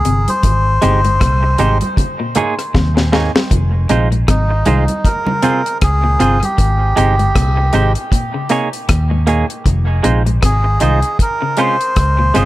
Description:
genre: dub reggae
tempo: 78 BPM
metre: 4/4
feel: swing 58% on 16ths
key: F minor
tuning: A4 = 439 Hz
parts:
  - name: melodica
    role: melody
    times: 0.0-12.5 s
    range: Eb4 to C5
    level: -18 LUFS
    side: equal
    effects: dub echo
  - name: electric guitar at the edge of break-up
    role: arpeggios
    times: 0.0-12.5 s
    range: Ab2 to Eb3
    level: -23 LUFS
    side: left 5 dB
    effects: dub echo
  - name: deep reggae drum kit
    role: drums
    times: 0.0-12.5 s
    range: hi-hat, kick drum, rim click, snare drum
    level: -16 LUFS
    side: equal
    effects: none
  - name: vintage muted fingered electric bass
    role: bass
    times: 0.1-12.5 s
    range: F1 to Eb2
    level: -14 LUFS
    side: equal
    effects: none
  - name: congas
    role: percussion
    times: 0.3-6.6 s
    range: none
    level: -25 LUFS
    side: right 2 dB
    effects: dub echo
  - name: clean electric guitar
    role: accompaniment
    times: 0.8-12.5 s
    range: Ab3 to Db5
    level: -19 LUFS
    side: right 4 dB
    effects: vibrato effect, dub echo
room: small room ambience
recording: none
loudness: -12 LUFS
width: side -16 dB against mid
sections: 0.0-12.5 A section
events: break 0.0-0.4; drum fill 2.7-3.5; part muted 6.6-12.5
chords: 0.4 Abmaj7; 2.0 Eb7sus4; 3.5 Fm7; 5.0 Dbmaj7; 6.6 Abmaj7; 8.1 Eb7sus4; 9.7 Fm7; 11.2 Dbmaj7

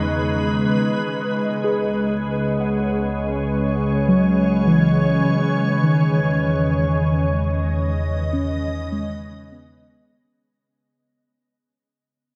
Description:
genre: ambient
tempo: 77 BPM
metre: 3/4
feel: straight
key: C# minor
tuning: A4 = 441 Hz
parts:
  - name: soft additive organ-like pad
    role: sustained chords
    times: 0.0-10.4 s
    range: G#3 to D#5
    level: -25 LUFS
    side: equal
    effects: ensemble chorus, built-in reverb
  - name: muted felt-like synth keys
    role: arpeggios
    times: 0.0-11.2 s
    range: D#3 to C#6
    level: -24 LUFS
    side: equal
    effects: chorus, tape echo
  - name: round analog bass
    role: bass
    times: 0.0-10.3 s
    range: C#2 to E2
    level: -30 LUFS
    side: equal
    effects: none
  - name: organ-like drone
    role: drone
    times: 0.0-10.4 s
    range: C#3 to G#3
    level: -28 LUFS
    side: equal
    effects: ensemble chorus, built-in reverb
room: wet huge ambient reverb, RT60 8.3 s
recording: none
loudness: -20 LUFS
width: mono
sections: 0.0-1.0 A section; 1.0-10.4 B section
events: fade-in on analog synth bass 1.0-10.4; fade-out 7.2-10.4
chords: 0.0 Emaj7; 1.0 C#m7; 5.7 Emaj7

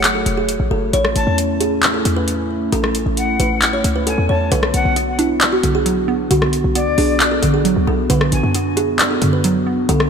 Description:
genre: hip hop, trap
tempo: 134 BPM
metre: 4/4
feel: half-time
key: unclear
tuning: A4 = 443 Hz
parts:
  - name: kalimba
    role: melody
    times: 0.0-10.1 s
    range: E4 to C#5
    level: -21 LUFS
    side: right 2 dB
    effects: ping-pong delay
  - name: dark analog pad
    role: sustained chords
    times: 0.0-10.1 s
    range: F#3 to C#5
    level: -22 LUFS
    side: left 1 dB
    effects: wide subtle chorus
  - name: short 808-style bass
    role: bass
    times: 0.0-10.1 s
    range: E1 to F#2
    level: -21 LUFS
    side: left 1 dB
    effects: none
  - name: booming analog drum machine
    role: drums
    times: 0.0-10.1 s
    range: handclaps, hi-hat, rim click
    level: -20 LUFS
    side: left 1 dB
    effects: none
  - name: jazz flute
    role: second line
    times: 1.2-8.5 s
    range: D5 to A5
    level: -24 LUFS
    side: left 4 dB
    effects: ping-pong delay
  - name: hollow square pluck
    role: accompaniment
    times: 4.5-10.1 s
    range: D3 to D5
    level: -20 LUFS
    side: right 4 dB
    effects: chorus
room: moderate church reverb, RT60 2.7 s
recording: dreamy mix soaked in reverb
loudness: -14 LUFS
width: side -6 dB against mid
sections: 0.0-10.1 A section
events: none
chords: 0.0 F#m; 0.9 A; 4.5 Bm

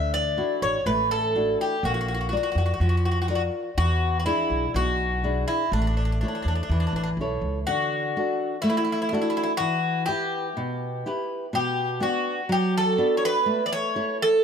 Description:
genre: greek folk, Greek bouzouki band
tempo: 124 BPM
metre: 4/4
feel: straight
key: D major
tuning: A4 = 441 Hz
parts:
  - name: Greek bouzouki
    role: melody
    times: 0.0-14.4 s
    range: D4 to E5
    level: -25 LUFS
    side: equal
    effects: none
  - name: flamenco guitar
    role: accompaniment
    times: 0.0-14.3 s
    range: B2 to D5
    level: -28 LUFS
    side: left 1 dB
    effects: none
  - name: upright bass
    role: bass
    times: 0.0-7.6 s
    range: A1 to F2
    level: -26 LUFS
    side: equal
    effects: none
room: moderate plate reverb, RT60 2.9 s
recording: none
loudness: -22 LUFS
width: side -7 dB against mid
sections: 0.0-7.7 A section; 7.7-14.4 A section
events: none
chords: 0.0 Dadd9; 1.8 Bb; 3.8 E7; 5.7 A; 7.7 D; 9.6 Em; 11.5 Bm; 13.5 A

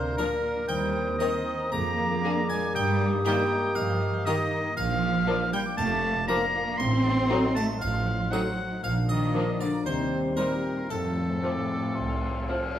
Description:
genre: cinematic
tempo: 118 BPM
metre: 4/4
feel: straight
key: Bb major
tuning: A4 = 444 Hz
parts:
  - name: harpsichord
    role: melody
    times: 0.0-12.7 s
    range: A4 to C6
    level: -37 LUFS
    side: right 1 dB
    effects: none
  - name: bright oboe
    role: second line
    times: 0.0-12.8 s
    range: A4 to C6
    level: -31 LUFS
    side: equal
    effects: none
  - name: dark clarinet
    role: second line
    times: 0.0-12.7 s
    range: G4 to C5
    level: -33 LUFS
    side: left 2 dB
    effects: none
  - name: hollow concert flute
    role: second line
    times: 0.0-12.8 s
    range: C6 to F6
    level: -37 LUFS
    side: left 2 dB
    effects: none
  - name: mellow bassoon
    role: accompaniment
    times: 0.0-12.6 s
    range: F3 to D4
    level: -36 LUFS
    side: right 2 dB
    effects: none
  - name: concert harp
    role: arpeggios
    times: 0.0-12.8 s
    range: F2 to D6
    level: -34 LUFS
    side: left 5 dB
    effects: none
  - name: rich studio double bass section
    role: bass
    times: 0.0-12.4 s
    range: F1 to G2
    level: -32 LUFS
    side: right 2 dB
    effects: none
  - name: warm studio cello section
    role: bass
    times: 0.0-12.7 s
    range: A2 to C4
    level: -32 LUFS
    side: right 2 dB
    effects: none
  - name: rich studio violin section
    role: melody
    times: 0.2-12.6 s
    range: C4 to Bb4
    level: -38 LUFS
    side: left 6 dB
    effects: none
  - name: rich studio violin section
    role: second line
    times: 0.2-12.6 s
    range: Bb3 to D4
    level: -38 LUFS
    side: left 3 dB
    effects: none
  - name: clear studio viola section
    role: accompaniment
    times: 0.2-12.6 s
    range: D3 to G3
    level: -37 LUFS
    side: equal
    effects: none
  - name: warm French horn section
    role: sustained chords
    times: 0.2-12.7 s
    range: F3 to Eb4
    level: -33 LUFS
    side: left 2 dB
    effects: none
room: wet recital hall reverb, RT60 1.4 s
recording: none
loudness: -24 LUFS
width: side -10 dB against mid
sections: 0.0-12.8 A section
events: none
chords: 0.0 Bb/D; 0.7 Eb6; 1.7 Bb7/F; 2.7 Eb/G; 4.8 Bb; 6.8 Adim7; 8.8 Bb; 9.9 Cm/Eb; 10.9 F

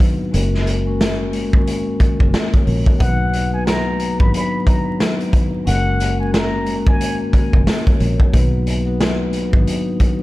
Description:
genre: hip hop, boom-bap hip-hop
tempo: 90 BPM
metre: 4/4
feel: swing 60% on 16ths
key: F# major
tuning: A4 = 439 Hz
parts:
  - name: vibraphone with soft mallets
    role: accompaniment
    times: 0.0-10.2 s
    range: F#3 to C#5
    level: -21 LUFS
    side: left 2 dB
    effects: cassette tape, high-pass filter, low-pass filter
  - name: raw garage drum kit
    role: drums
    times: 0.0-10.2 s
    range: hi-hat, kick drum, snare drum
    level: -17 LUFS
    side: equal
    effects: none
  - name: fingered electric bass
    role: bass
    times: 0.3-9.7 s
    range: F#1 to B1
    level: -20 LUFS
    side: equal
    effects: none
  - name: trumpet with plunger mute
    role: melody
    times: 3.0-7.2 s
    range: F#5 to B5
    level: -25 LUFS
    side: left 1 dB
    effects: high-pass filter, low-pass filter, ping-pong delay
room: studio reverb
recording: dark, warm production, vinyl crackle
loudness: -15 LUFS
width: side -18 dB against mid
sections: 0.0-10.2 A section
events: none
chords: 0.3 F#add9; 3.0 B; 5.7 F#add9; 8.3 B

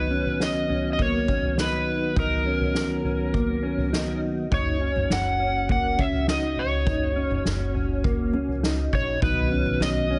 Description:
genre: dream pop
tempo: 102 BPM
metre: 4/4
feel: straight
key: B major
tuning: A4 = 441 Hz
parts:
  - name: overdriven slide guitar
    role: melody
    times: 0.0-10.2 s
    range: A#4 to F#5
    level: -30 LUFS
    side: equal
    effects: digital delay
  - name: percussive tonewheel organ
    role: sustained chords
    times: 0.0-10.2 s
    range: D#3 to F#4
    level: -33 LUFS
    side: equal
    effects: chorus vibrato, slow rotary speaker
  - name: mellow electric guitar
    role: arpeggios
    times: 0.0-10.2 s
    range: A#3 to D#4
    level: -32 LUFS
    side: equal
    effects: analog chorus, digital delay
  - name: soft-mallet drum kit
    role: drums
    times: 0.3-9.9 s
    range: kick drum, snare drum, toms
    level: -29 LUFS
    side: equal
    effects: none
  - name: upright bass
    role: bass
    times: 4.5-10.2 s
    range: F#1 to C#2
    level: -32 LUFS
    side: equal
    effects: none
room: light reverb, studio reverb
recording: nothing above 10.6 kHz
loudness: -24 LUFS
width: mono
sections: 0.0-10.2 A section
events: none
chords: 0.0 Bmaj7; 4.5 F#; 9.2 B

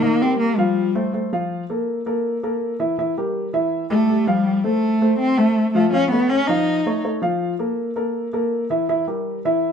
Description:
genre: jazz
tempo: 163 BPM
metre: 4/4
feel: straight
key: F major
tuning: A4 = 440 Hz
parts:
  - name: warm cello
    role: melody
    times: 0.0-1.1, 3.9-7.0 s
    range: G3 to Eb4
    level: -18 LUFS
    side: equal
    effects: none
  - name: dark baby grand piano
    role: accompaniment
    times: 0.0-9.7 s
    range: Eb3 to F5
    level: -21 LUFS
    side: equal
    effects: none
room: moderate studio reverb, RT60 0.8 s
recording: band playing live in one room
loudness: -18 LUFS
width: side -7 dB against mid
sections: 0.0-9.7 A section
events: none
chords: 0.0 Eb69; 0.8 Fadd9; 1.5 Bb5; 3.0 Edim; 3.7 A5; 4.5 F; 5.9 Faug7; 7.4 Bb5; 8.9 Edim

